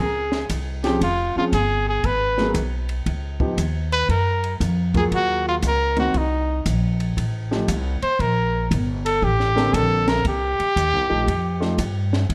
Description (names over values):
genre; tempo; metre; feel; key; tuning
jazz, small-group swing and bop; 117 BPM; 4/4; swing 66% on 8ths; unclear; A4 = 442 Hz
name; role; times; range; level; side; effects
clear trumpet; melody; 0.0-12.1 s; Eb4 to C5; -24 LUFS; equal; plate reverb
upright bass; bass; 0.0-12.3 s; F1 to Bb2; -25 LUFS; equal; none
compact cocktail drum kit; drums; 0.3-12.3 s; hi-hat, kick drum, ride cymbal, snare drum; -32 LUFS; equal; none
clear concert grand piano; accompaniment; 0.9-11.8 s; D3 to Bb4; -28 LUFS; equal; none
room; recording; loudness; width
light reverb; dark, warm production; -21 LUFS; mono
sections
0.0-12.3 A section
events
none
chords
0.0 Dbmaj7; 2.0 Abm9; 3.1 Db9; 4.1 Gbmaj9; 6.1 Cm7; 7.2 F9; 8.2 Bbmaj9; 10.3 Cm7; 11.3 F9